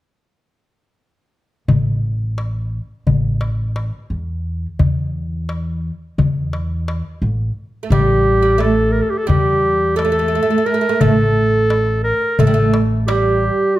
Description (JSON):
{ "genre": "Turkish makam ensemble", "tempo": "174 BPM (eighths)", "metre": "9/8", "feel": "straight", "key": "unclear", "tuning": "A4 = 439 Hz", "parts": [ { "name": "upright bass", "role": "bass", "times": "1.7-13.5 s", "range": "A1 to E2", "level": "-19 LUFS", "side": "equal", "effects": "none" }, { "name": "darbuka", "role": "percussion", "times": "1.7-13.5 s", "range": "none", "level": "-19 LUFS", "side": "left 3 dB", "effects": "none" }, { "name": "oud", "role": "second line", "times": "7.8-13.8 s", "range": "G3 to A3", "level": "-20 LUFS", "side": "right 5 dB", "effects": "none" }, { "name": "mellow clarinet", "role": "melody", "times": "7.9-13.8 s", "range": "F#4-39c to Bb4", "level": "-16 LUFS", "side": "equal", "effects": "slapback echo" } ], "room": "moderate recital hall reverb, RT60 1.3 s", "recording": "none", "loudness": "-15 LUFS", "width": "side -15 dB against mid", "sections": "1.7-7.9 A section; 7.9-13.8 B section", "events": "none", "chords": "none" }